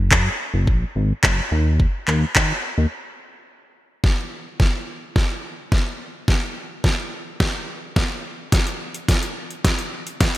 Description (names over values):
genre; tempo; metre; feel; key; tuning
dance-pop; 107 BPM; 4/4; straight; Eb minor; A4 = 440 Hz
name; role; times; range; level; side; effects
chorused synth bass; bass; 0.0-2.9 s; Gb1 to Eb3; -19 LUFS; equal; sidechain pumping
smooth R&B drum kit; drums; 0.1-10.4 s; handclaps, hi-hat, kick drum, snare drum; -19 LUFS; equal; gated reverb
room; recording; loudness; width
light reverb, digital ambience; bright 1980s-style digital production; -19 LUFS; side -15 dB against mid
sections
0.0-4.0 A section; 4.0-10.4 B section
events
break 2.9-4.0; build-up 4.0-10.4; drum fill 4.0-10.4; filter sweep 4.0-10.4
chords
none